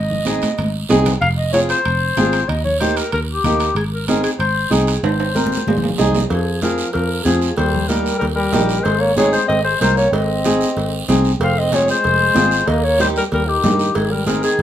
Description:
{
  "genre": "latin, cumbia",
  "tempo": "188 BPM",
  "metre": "4/4",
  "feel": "straight",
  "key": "unclear",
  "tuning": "A4 = 440 Hz",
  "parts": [
    { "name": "breathy clarinet", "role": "melody", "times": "0.0-14.6 s", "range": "G4 to F5", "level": "-19 LUFS", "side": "left 2 dB", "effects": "none" },
    { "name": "fingered electric bass", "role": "bass", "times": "0.0-14.6 s", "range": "F1 to G2", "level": "-21 LUFS", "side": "equal", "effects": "none" },
    { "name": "congas", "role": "percussion", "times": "0.1-14.6 s", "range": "none", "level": "-26 LUFS", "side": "left 1 dB", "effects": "none" },
    { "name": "flamenco guitar", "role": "accompaniment", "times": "0.2-14.5 s", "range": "Bb3 to Bb4", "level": "-19 LUFS", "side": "right 1 dB", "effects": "none" },
    { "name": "guiro", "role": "percussion", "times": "0.3-14.6 s", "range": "none", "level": "-29 LUFS", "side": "right 6 dB", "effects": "none" },
    { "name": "timbales and cowbell", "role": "percussion", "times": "0.3-14.6 s", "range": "none", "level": "-26 LUFS", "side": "right 4 dB", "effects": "none" },
    { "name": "bright trombone", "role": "second line", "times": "6.3-14.6 s", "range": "Eb3 to C4", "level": "-24 LUFS", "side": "left 2 dB", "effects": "none" }
  ],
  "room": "moderate studio reverb, RT60 0.6 s",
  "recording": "minimal, uncompressed stereo recording",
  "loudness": "-15 LUFS",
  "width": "side -11 dB against mid",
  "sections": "0.0-6.3 A section; 6.3-14.6 A section",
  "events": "drum fill 0.4-1.2, 5.0-6.3",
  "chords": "0.0 Ab; 1.2 Fm; 2.5 Eb; 3.8 Ab; 6.3 Fm; 7.6 Eb; 8.9 Ab; 11.4 Fm; 12.7 Eb; 14.0 Ab"
}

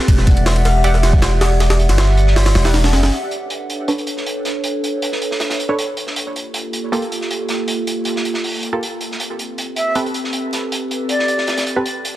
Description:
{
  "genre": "drum and bass, jungle",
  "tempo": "158 BPM",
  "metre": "4/4",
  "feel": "straight",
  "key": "unclear",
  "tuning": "A4 = 440 Hz",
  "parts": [
    { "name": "warbly tape-like pad", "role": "sustained chords", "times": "0.1-12.2 s", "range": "Bb3 to F#5", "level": "-22 LUFS", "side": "right 1 dB", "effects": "chorus, built-in reverb, vintage 12-bit sampler grit" },
    { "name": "long sustained 808-style bass", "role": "bass", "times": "0.1-3.1 s", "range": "E1 to G1", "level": "-14 LUFS", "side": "equal", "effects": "none" },
    { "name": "crunchy breakbeat drum kit", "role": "drums", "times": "0.1-12.1 s", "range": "hi-hat, snare drum", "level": "-25 LUFS", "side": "right 1 dB", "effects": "high-pass filter on hats, small room reverb, high-pass filter on snare, high-pass filter on room" },
    { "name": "jungle sampler-style drum kit", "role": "drums", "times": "0.1-3.1 s", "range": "hi-hat, kick drum, ride cymbal, snare drum", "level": "-16 LUFS", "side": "equal", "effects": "overdrive, small room reverb" },
    { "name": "filtered dub chord stab", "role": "stabs", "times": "0.8-11.8 s", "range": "Bb3 to F#5", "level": "-25 LUFS", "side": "right 2 dB", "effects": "chorus, dub echo" },
    { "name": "concert flute", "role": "melody", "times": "9.8-11.6 s", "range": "D5 to E5", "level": "-23 LUFS", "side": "equal", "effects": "dub echo" }
  ],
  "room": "light reverb, studio ambience",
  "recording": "dense, heavily limited modern master, vinyl crackle",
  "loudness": "-15 LUFS",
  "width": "side -14 dB against mid",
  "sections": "0.0-3.1 A section; 3.1-12.2 B section",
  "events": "drop 0.0-3.1; kick drops out 2.4-3.1",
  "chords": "0.1 Em9; 3.1 Bm9; 6.2 Gm9; 9.2 Am9"
}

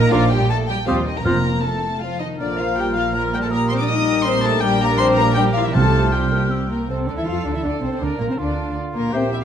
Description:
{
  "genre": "quick classical-period movement for symphony orchestra",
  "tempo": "160 BPM",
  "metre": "3/4",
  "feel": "straight",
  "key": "Bb major, F major from 4.6 s",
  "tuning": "A4 = 439 Hz",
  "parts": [
    { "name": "warm chamber violin section", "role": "melody", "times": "0.0-9.4 s", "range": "Bb3 to Eb6", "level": "-25 LUFS", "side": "left 5 dB", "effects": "none" },
    { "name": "warm clarinet", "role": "second line", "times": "0.0-9.3 s", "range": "Bb3 to C5", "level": "-30 LUFS", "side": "equal", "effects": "none" },
    { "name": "warm cor anglais", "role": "second line", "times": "0.0-9.4 s", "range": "F4 to C5", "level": "-29 LUFS", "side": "right 3 dB", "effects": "none" },
    { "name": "dark studio viola section", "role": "accompaniment", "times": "0.0-9.4 s", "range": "F3 to G4", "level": "-26 LUFS", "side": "right 2 dB", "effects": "none" },
    { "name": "dark French horn section", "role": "sustained chords", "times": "0.0-9.4 s", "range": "D3 to F4", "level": "-25 LUFS", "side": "left 4 dB", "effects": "none" },
    { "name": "dark chamber cello section", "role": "bass", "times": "0.0-9.4 s", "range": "Eb2 to F3", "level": "-26 LUFS", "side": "right 4 dB", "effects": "none" },
    { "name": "dark chamber double bass section", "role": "bass", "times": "0.0-9.4 s", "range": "F1 to F2", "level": "-24 LUFS", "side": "right 4 dB", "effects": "none" },
    { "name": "mellow hollow concert flute", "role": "second line", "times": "0.1-9.3 s", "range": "C4 to F6", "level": "-28 LUFS", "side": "left 2 dB", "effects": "none" },
    { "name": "warm chamber violin section", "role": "second line", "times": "0.1-9.4 s", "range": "D4 to F5", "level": "-27 LUFS", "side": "left 3 dB", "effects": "none" },
    { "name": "timpani", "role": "percussion", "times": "1.2-1.8, 5.8-6.3 s", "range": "F2 to C3", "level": "-24 LUFS", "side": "equal", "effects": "none" }
  ],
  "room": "moderate concert hall reverb, RT60 2.1 s",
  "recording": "close, detailed microphones",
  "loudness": "-17 LUFS",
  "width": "side -8 dB against mid",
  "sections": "0.0-6.9 A section; 6.9-9.4 B section",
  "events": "none",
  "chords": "0.1 Bb; 0.9 Cm/Eb; 1.3 F; 2.4 Bb5; 3.5 Eb/Bb; 4.6 Gm/Bb; 5.7 Csus4; 6.5 C; 6.9 F/C; 8.0 Bb"
}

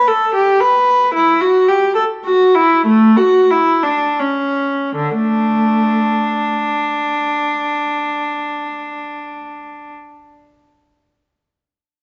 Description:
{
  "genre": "classical, baroque-style suite movement for unaccompanied viola",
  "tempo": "78-115 BPM",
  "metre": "3/4",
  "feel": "rubato",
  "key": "D major",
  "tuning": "A4 = 440 Hz",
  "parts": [
    { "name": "rich viola", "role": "solo", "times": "0.0-9.9 s", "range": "D3 to B4", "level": "-15 LUFS", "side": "equal", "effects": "none" }
  ],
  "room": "moderate recital hall reverb, RT60 1.7 s",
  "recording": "dark, warm production, nothing above 7.7 kHz",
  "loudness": "-15 LUFS",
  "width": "mono",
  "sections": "0.0-5.0 A section; 5.0-9.4 B section",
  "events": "slowing down 0.3-5.0",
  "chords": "none"
}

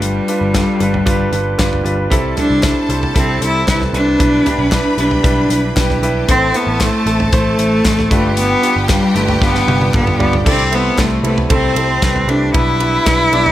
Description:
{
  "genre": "piano-driven pop",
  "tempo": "115 BPM",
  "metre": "4/4",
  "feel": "straight",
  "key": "C major",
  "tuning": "A4 = 440 Hz",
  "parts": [
    { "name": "clear cello", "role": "melody", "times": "0.0-13.5 s", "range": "G3 to E4", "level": "-16 LUFS", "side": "left 1 dB", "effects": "none" },
    { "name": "clear baby grand piano", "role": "accompaniment", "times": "0.0-13.5 s", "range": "G2 to D5", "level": "-19 LUFS", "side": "right 1 dB", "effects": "none" },
    { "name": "mellow tonewheel organ", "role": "sustained chords", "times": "0.0-10.4 s", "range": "E4 to A5", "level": "-28 LUFS", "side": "equal", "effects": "none" },
    { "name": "vintage muted picked electric bass", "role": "bass", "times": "0.0-13.5 s", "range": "G1 to C2", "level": "-20 LUFS", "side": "equal", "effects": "none" },
    { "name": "modern studio drum kit", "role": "drums", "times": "0.0-13.5 s", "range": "crash cymbal, hi-hat, kick drum, ride cymbal, snare drum, toms", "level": "-18 LUFS", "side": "equal", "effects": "none" },
    { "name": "group handclap", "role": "percussion", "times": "0.5-13.2 s", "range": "none", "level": "-31 LUFS", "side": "left 2 dB", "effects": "none" },
    { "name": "bright symphonic violin section", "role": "second line", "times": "2.1-12.2 s", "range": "B3 to B5", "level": "-24 LUFS", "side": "left 1 dB", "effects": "none" }
  ],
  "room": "light reverb, small room ambience",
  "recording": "none",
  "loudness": "-12 LUFS",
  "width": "side -13 dB against mid",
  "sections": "0.0-10.5 A section; 10.5-13.5 B section",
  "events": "drum fill 9.4-10.5",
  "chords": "0.0 G7; 2.1 C6; 4.2 Em7/B; 6.3 Am; 8.1 G7; 10.5 C6; 12.5 Em7/B"
}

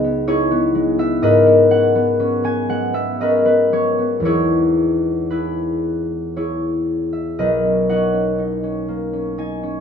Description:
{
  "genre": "classical, solo harp piece",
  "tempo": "55-64 BPM",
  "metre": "3/4",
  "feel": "rubato",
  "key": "unclear",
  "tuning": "A4 = 441 Hz",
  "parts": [
    { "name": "concert harp", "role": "solo", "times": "0.0-9.8 s", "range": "B1 to G#5", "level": "-15 LUFS", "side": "left 1 dB", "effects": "none" }
  ],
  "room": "light reverb",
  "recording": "minimal, uncompressed stereo recording",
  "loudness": "-15 LUFS",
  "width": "side -7 dB against mid",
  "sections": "0.0-9.8 A section",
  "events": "none",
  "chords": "0.0 C#m9; 1.2 G#m11; 4.2 Emaj7; 7.4 Bmaj9"
}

